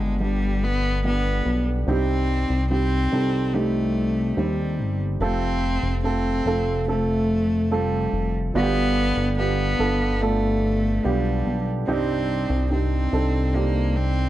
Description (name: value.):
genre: pop ballad.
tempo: 72 BPM.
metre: 4/4.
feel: straight.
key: C dorian.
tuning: A4 = 440 Hz.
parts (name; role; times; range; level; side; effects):
rich cello; melody; 0.0-14.3 s; G3 to C4; -25 LUFS; left 1 dB; slapback echo.
dark upright piano; accompaniment; 0.0-14.3 s; G2 to A4; -26 LUFS; right 4 dB; none.
chorused synth bass; bass; 0.0-14.3 s; F1 to Eb2; -24 LUFS; left 1 dB; none.
room: small room ambience.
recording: dry, close 1970s-style studio recording.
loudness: -20 LUFS.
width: side -14 dB against mid.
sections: 0.0-1.9 A section; 1.9-14.3 B section.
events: none.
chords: 0.0 G; 1.9 Cm; 5.2 F; 8.5 G7; 11.9 Cmadd9.